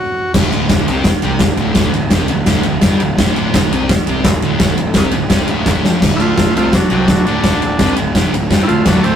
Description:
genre	garage rock duo or trio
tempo	169 BPM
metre	4/4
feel	straight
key	unclear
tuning	A4 = 440 Hz
part	overdriven combo organ	melody	0.0-0.3, 6.2-9.2 s	F#3 to F#4	-15 LUFS	equal	none
part	fuzz picked electric bass	bass	0.3-9.2 s	D1 to C2	-20 LUFS	equal	overdrive
part	oversized low-tuned drum kit	drums	0.3-9.1 s	crash cymbal, kick drum, ride cymbal, snare drum	-14 LUFS	equal	none
part	thick fuzz guitar	riff	0.4-9.2 s	D2 to C4	-18 LUFS	right 1 dB	distortion
part	group handclap	percussion	3.6-5.8 s	none	-25 LUFS	right 1 dB	none
room	light reverb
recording	rough rehearsal-room recording, tube saturation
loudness	-11 LUFS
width	side -8 dB against mid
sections	0.3-6.0 A section; 6.0-9.2 B section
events	stop 0.0-0.3; drum fill 5.7-6.0; transistor combo organ solo 6.0-9.2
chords	0.3 D7(no3); 6.0 D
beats	| 0.35 0.70 1.05 1.41 | 1.76 2.12 2.47 2.82 | 3.18 3.53 3.89 4.24 | 4.60 4.96 5.31 5.67 | 6.02 6.38 6.73 7.09 | 7.45 7.80 8.16 8.51 | 8.87

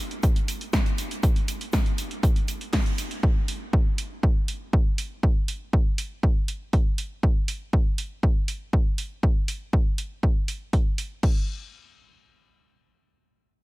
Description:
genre	techno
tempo	120 BPM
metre	4/4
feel	straight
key	none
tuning	none
part	punchy analog drum machine	drums	0.1-11.3 s	crash cymbal, hi-hat, snare drum	-32 LUFS	right 1 dB	sidechain pumping on hats, sidechain pumping on cymbals
part	electronic kick drum	drums	0.2-11.3 s	none	-22 LUFS	equal	none
part	jazz brush drum kit	drums	0.2-3.1 s	hi-hat, shaker, snare drum	-43 LUFS	right 1 dB	sidechain pumping on hats, high-pass filter on hats, high-pass filter on snare, sidechain pumping on perc, high-pass filter on perc, high-pass filter on room
room	studio reverb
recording	none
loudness	-22 LUFS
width	side -21 dB against mid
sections	0.0-11.2 A section; 11.2-13.6 B section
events	none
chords	none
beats	0.23 0.73 | 1.23 1.73 2.23 2.73 | 3.23 3.73 4.23 4.73 | 5.23 5.73 6.23 6.73 | 7.23 7.73 8.23 8.73 | 9.23 9.73 10.23 10.73 | 11.23

